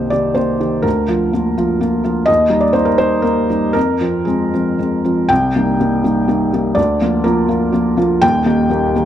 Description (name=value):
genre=neoclassical minimalist piano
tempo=115-128 BPM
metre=3/4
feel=rubato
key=C minor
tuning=A4 = 440 Hz
part: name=felt-muted upright piano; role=solo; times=0.0-9.1 s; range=Eb1 to G5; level=-13 LUFS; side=equal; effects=none
room=moderate spring reverb, RT60 2.1 s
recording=none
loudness=-13 LUFS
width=side -10 dB against mid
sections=0.0-5.3 A section; 5.3-9.1 B section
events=none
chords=0.0 Cm7; 0.8 Bb/D; 2.3 Eb; 3.8 Fm; 5.3 Cm7; 6.8 Bb/D; 8.2 Eb